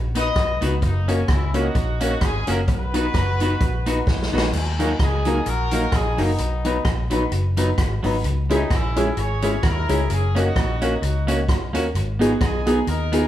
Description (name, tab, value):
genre	ska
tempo	130 BPM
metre	4/4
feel	swing 56% on 8ths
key	B major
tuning	A4 = 440 Hz
part	vintage muted fingered electric bass	bass	0.0-13.3 s	F#1 to D#2	-23 LUFS	equal	none
part	electric guitar at the edge of break-up	accompaniment	0.1-13.2 s	F#3 to G#4	-28 LUFS	right 2 dB	none
part	warm horn section	melody	0.2-13.3 s	A#3 to D#5	-27 LUFS	left 1 dB	none
part	dark upright piano	stabs	0.2-13.2 s	B3 to B4	-24 LUFS	left 1 dB	none
part	swinging big-band drum kit	drums	0.2-13.2 s	crash cymbal, hi-hat, kick drum, rim click, snare drum	-24 LUFS	equal	none
room	moderate large studio reverb, RT60 1.2 s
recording	band playing live in one room, vinyl crackle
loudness	-18 LUFS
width	side -12 dB against mid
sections	0.0-4.5 A section; 4.5-13.3 B section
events	drum fill 4.1-4.5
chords	0.0 B; 0.8 F#; 2.7 B; 4.5 D#m; 6.4 B; 8.2 C#m; 10.1 F#; 11.9 G#m